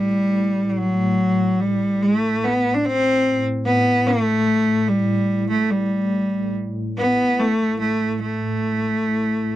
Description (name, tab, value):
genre	caucasian folk, Caucasian lament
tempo	72 BPM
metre	4/4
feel	rubato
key	A dorian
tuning	A4 = 441 Hz
part	bright cello	melody	0.0-9.6 s	F#3 to D4	-18 LUFS	equal	none
part	deep dark ambient pad	drone	0.0-9.6 s	A2	-27 LUFS	equal	chorus, built-in reverb, tremolo
room	moderate booth ambience, RT60 0.2 s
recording	dry, close 1970s-style studio recording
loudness	-18 LUFS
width	side -14 dB against mid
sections	0.0-9.6 A section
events	none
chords	none